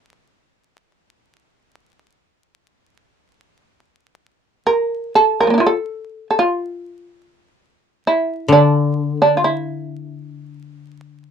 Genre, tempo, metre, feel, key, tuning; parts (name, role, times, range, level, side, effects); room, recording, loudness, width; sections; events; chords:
japanese traditional, Japanese chamber music; 58-66 BPM; 4/4; rubato; A miyako bushi; A4 = 439 Hz
shamisen; melody; 0.0-11.2 s; F3 to Bb4; -15 LUFS; right 2 dB
koto; accompaniment; 8.5-11.2 s; D3; -18 LUFS; left 4 dB
light reverb; dark, warm production, vinyl crackle; -15 LUFS; side -7 dB against mid
0.0-4.7 A section; 4.7-11.3 B section